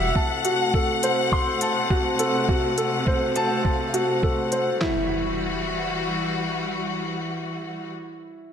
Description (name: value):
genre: piano and strings electronica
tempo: 103 BPM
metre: 4/4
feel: straight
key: unclear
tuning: A4 = 439 Hz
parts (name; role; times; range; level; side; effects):
- clear studio string section; sustained chords; 0.0-7.9 s; C3 to F#5; -26 LUFS; left 2 dB; sidechain pumping
- clear upright piano; riff; 0.0-8.5 s; E4 to C6; -25 LUFS; equal; ping-pong delay
- lo-fi sampler-style drum kit; drums; 0.2-4.9 s; handclaps, kick drum, snare drum; -24 LUFS; equal; none
- electronic hi-hat; drums; 0.4-4.6 s; none; -28 LUFS; left 3 dB; none
- impact; sound effects; 4.8-8.0 s; none; -34 LUFS; equal; none
room: moderate lush hall reverb, RT60 1.8 s, digital ambience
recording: none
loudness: -21 LUFS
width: side -8 dB against mid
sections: 0.0-4.8 A section; 4.8-7.1 B section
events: none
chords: 0.2 F#dim; 4.8 Emadd9